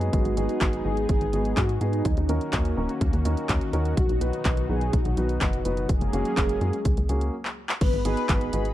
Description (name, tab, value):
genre	italo disco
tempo	125 BPM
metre	4/4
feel	straight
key	G# minor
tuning	A4 = 440 Hz
part	warm analog pad	sustained chords	0.0-8.7 s	B2 to B5	-32 LUFS	equal	chorus
part	dark baby grand piano	stabs	0.0-8.7 s	A#3 to B4	-31 LUFS	right 1 dB	none
part	tight sequencer bass	bass	0.0-8.7 s	D#1 to G#2	-27 LUFS	equal	tube saturation
part	house drum kit	drums	0.0-8.7 s	crash cymbal, handclaps, hi-hat	-31 LUFS	equal	overdrive
part	mellow synth brass	melody	0.1-8.6 s	G#3 to B4	-30 LUFS	equal	chorus, tape echo
part	electronic kick drum	drums	0.1-8.4 s	none	-25 LUFS	equal	overdrive
room	little or no reverb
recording	dry, close 1970s-style studio recording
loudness	-22 LUFS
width	side -14 dB against mid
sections	0.0-7.8 A section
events	break 7.3-7.8; drum fill 7.5-7.8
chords	0.1 G#m7; 2.1 D#m7; 4.0 B; 5.9 F#add9; 7.8 G#m7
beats	| 0.13 0.61 1.09 1.57 | 2.05 2.53 3.01 3.49 | 3.97 4.45 4.93 5.41 | 5.89 6.37 6.85 7.33 | 7.81 8.29